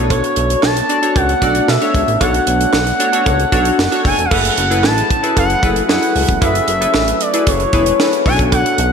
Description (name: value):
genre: early-eighties boogie funk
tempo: 114 BPM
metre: 4/4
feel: straight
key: F# minor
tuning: A4 = 440 Hz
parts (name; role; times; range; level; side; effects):
- funky polysynth comp; accompaniment; 0.0-8.8 s; C#4 to D5; -18 LUFS; left 2 dB; chorus, slapback echo
- warm analog pad; sustained chords; 0.0-8.9 s; F#3 to B4; -26 LUFS; right 1 dB; chorus
- chorused synth bass; bass; 0.0-8.9 s; E1 to B2; -19 LUFS; equal; none
- expressive portamento lead; melody; 0.1-8.9 s; C#5 to A5; -16 LUFS; left 1 dB; chorus, slapback echo
- tight funk drum kit; drums; 0.1-8.9 s; crash cymbal, hi-hat, kick drum, snare drum; -18 LUFS; right 1 dB; none
- cowbell; percussion; 0.1-8.6 s; none; -26 LUFS; right 7 dB; slapback echo
room: moderate scoring stage reverb, RT60 1.6 s, small room ambience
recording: big arena sound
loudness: -12 LUFS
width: side -6 dB against mid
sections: 0.0-4.3 A section; 4.3-8.9 B section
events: none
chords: 0.0 Bm9; 4.3 F#m11; 8.3 Bm9